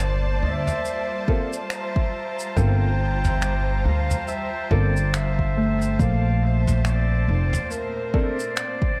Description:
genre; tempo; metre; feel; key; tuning
ambient dub; 70 BPM; 4/4; swing 58% on 16ths; G dorian; A4 = 440 Hz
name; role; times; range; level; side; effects
muted studio string section; sustained chords; 0.0-9.0 s; Bb2 to Bb5; -33 LUFS; equal; none
Celtic harp; arpeggios; 0.0-8.9 s; A3 to E6; -33 LUFS; equal; vintage 12-bit sampler grit, dub echo
upright bass; bass; 0.0-7.5 s; F1 to D2; -24 LUFS; equal; tube saturation
soft brush drum kit; drums; 0.0-8.8 s; finger snaps, shaker, toms; -32 LUFS; equal; none
warm clarinet; melody; 0.4-9.0 s; Bb4 to G5; -32 LUFS; equal; dub echo
warm upright piano; stabs; 1.3-8.3 s; Bb3 to A4; -35 LUFS; equal; dub echo
electronic kick drum; drums; 1.3-9.0 s; none; -25 LUFS; equal; overdrive
room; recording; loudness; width
light reverb, small room reverb; none; -23 LUFS; mono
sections
0.0-9.0 A section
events
none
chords
0.0 Gm11; 6.0 Bbmaj9

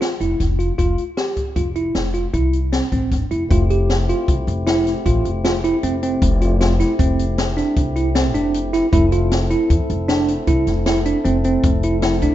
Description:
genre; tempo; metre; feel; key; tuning
progressive instrumental, band music in an uneven meter; 155 BPM; 7/4; straight; F major; A4 = 440 Hz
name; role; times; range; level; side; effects
bell-like tine electric piano; arpeggios; 0.0-12.3 s; C4 to G4; -20 LUFS; right 2 dB; medium stereo tremolo
open jazz drum kit; drums; 0.0-12.3 s; hi-hat, kick drum, snare drum; -22 LUFS; left 1 dB; none
upright bass; bass; 0.2-12.2 s; F1 to E2; -20 LUFS; left 1 dB; none
tonewheel organ; accompaniment; 3.5-12.3 s; A3 to A4; -26 LUFS; left 2 dB; stopped rotary speaker
room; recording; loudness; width
light reverb; rough home demo mix, nothing above 7.7 kHz; -16 LUFS; side -12 dB against mid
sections
0.0-3.5 A section; 3.5-12.3 B section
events
none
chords
0.0 Fmaj7(no3); 3.5 Fmaj7; 8.9 Am/F

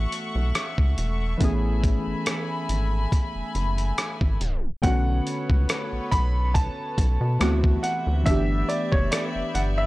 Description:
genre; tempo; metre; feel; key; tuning
contemporary R&B; 70 BPM; 4/4; swing 54% on 16ths; unclear; A4 = 439 Hz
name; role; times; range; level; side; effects
warm analog keys; accompaniment; 0.0-9.9 s; D3 to G#4; -30 LUFS; equal; chorus
warm studio string section; sustained chords; 0.0-9.9 s; C3 to C#6; -33 LUFS; left 1 dB; sidechain pumping
rubbery square bass; bass; 0.0-9.9 s; E1 to B2; -24 LUFS; equal; none
dusty soul sampler-style drum kit; drums; 0.1-9.8 s; hi-hat, kick drum, rim click; -24 LUFS; equal; none
clear baby grand piano; melody; 4.8-9.9 s; C#5 to B5; -29 LUFS; right 1 dB; analog delay
room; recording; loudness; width
little or no reverb; dry, gritty hardware recording, transformer saturation, tape stop; -22 LUFS; side -19 dB against mid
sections
0.0-4.8 A section; 4.8-9.9 B section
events
tape stop 4.4-4.8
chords
0.0 A6; 1.4 F#m11; 4.8 Bm9; 7.4 D13; 8.3 G6

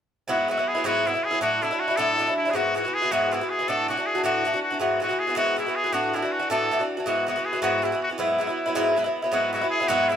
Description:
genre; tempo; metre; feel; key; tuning
celtic folk, Celtic jig; 106 BPM (dotted quarters); 6/8; straight; E mixolydian; A4 = 441 Hz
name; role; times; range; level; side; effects
trumpet with straight mute; melody; 0.3-10.2 s; E4 to A4; -25 LUFS; left 1 dB; none
Irish bouzouki; accompaniment; 0.3-10.2 s; G#2 to F#4; -24 LUFS; equal; none
room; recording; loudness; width
moderate studio reverb, RT60 0.8 s; band playing live in one room; -22 LUFS; side -8 dB against mid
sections
0.3-9.3 A section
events
none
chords
0.3 Eadd9; 1.4 Dadd9; 2.5 Eadd9; 3.7 Dadd9; 4.8 Eadd9; 5.9 Dadd9; 7.1 Eadd9

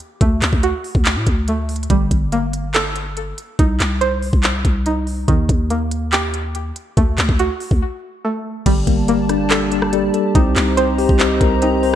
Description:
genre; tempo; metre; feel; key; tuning
hip hop, trap; 142 BPM; 4/4; half-time; G harmonic minor; A4 = 440 Hz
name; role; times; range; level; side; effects
string-like resonator pluck; arpeggios; 0.0-12.0 s; Eb3 to C5; -22 LUFS; right 3 dB; chorus, ping-pong delay
trap drum kit; drums; 0.0-11.9 s; crash cymbal, handclaps, hi-hat, kick drum, rim click; -18 LUFS; equal; vintage 12-bit sampler grit, gated reverb
growling 808-style bass; bass; 0.2-12.0 s; G1 to A2; -20 LUFS; equal; none
tine electric piano; accompaniment; 8.7-12.0 s; G3 to C5; -18 LUFS; left 3 dB; medium stereo tremolo
hollow soft pad; sustained chords; 9.0-12.0 s; Bb3 to Bb5; -24 LUFS; left 2 dB; chorus
room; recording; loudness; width
light reverb; bright 1980s-style digital production; -15 LUFS; side -11 dB against mid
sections
0.0-8.7 A section; 8.7-12.0 B section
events
break 7.8-8.7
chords
0.2 D; 1.9 Gmadd9; 3.6 Cm; 5.3 Eb; 7.0 D; 8.7 Gmadd9; 10.4 Cm7

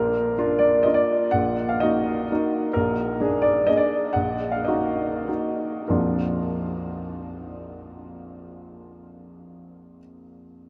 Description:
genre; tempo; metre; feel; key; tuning
classical, romantic triple-time dance for piano with dotted rhythms; 90-142 BPM; 3/4; rubato; Bb major; A4 = 441 Hz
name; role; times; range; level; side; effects
warm baby grand piano; solo; 0.0-10.7 s; Bb1 to Gb5; -24 LUFS; equal; none
room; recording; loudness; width
wet huge ambient reverb, RT60 7.4 s; in a vast, echoing space; -23 LUFS; mono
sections
0.0-5.9 A section; 5.9-9.3 B section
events
slowing down 2.1-5.9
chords
0.0 Bb; 1.3 Ebm/Bb; 2.7 Bb7; 4.2 Ebm/Bb; 5.9 Bb

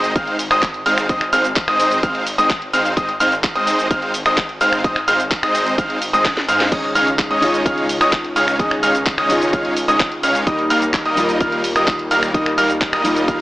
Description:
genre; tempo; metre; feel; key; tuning
EDM, festival progressive house; 128 BPM; 4/4; straight; Ab major; A4 = 440 Hz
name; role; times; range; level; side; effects
clear grand piano; arpeggios; 0.0-13.4 s; Eb6 to F6; -18 LUFS; equal; sidechain pumping, tape echo
supersaw chords; riff; 0.0-13.4 s; G3 to F5; -20 LUFS; equal; sidechain pumping, tape echo
wide detuned saw bass; bass; 0.0-13.4 s; Ab1 to Ab2; -29 LUFS; equal; chorus, sidechain pumping
house drum kit; drums; 0.0-13.4 s; crash cymbal, finger snaps, handclaps, hi-hat, shaker, snare drum; -22 LUFS; equal; none
electronic kick drum; drums; 0.2-13.4 s; none; -22 LUFS; equal; none
felt-muted upright piano; accompaniment; 6.7-13.4 s; Eb3 to F4; -22 LUFS; equal; sidechain pumping, tape echo
room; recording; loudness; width
moderate lush hall reverb, RT60 2.1 s; AM radio sound; -15 LUFS; side -18 dB against mid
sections
0.0-13.4 A section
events
drum fill 6.2-6.7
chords
0.0 Ab; 6.7 Dbsus2; 10.5 Eb

